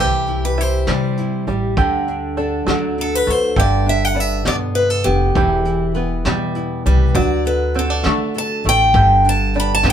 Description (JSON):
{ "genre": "acoustic folk duo or small band", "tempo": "67 BPM (dotted quarters)", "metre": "6/8", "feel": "straight", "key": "G major", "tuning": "A4 = 439 Hz", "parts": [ { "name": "picked steel-string acoustic guitar", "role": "melody", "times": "0.0-9.9 s", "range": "G4 to B5", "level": "-18 LUFS", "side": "left 1 dB", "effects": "none" }, { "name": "nylon-string guitar", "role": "accompaniment", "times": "0.0-9.9 s", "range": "G2 to D5", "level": "-23 LUFS", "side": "equal", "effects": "none" }, { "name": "open-back banjo", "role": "arpeggios", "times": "0.0-9.9 s", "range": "D3 to G4", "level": "-22 LUFS", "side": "right 2 dB", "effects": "none" }, { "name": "upright bass", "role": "bass", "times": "0.0-9.9 s", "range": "E1 to D3", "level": "-20 LUFS", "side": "equal", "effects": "none" }, { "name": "soft brush drum kit", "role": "drums", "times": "0.3-9.9 s", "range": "hi-hat, kick drum, snare drum", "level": "-21 LUFS", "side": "equal", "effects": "none" } ], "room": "wet small room ambience, RT60 0.5 s", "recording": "band playing live in one room", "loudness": "-15 LUFS", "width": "side -9 dB against mid", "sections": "0.0-9.9 A section", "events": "steel-string acoustic guitar solo 0.0-9.9", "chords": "0.0 C; 1.8 Dsus4; 2.7 D; 3.6 G; 5.4 Em; 7.2 D; 9.0 G", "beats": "0.87 | 1.77 2.67 | 3.56 4.46 | 5.36 6.26 | 7.16 8.05 | 8.95 9.85" }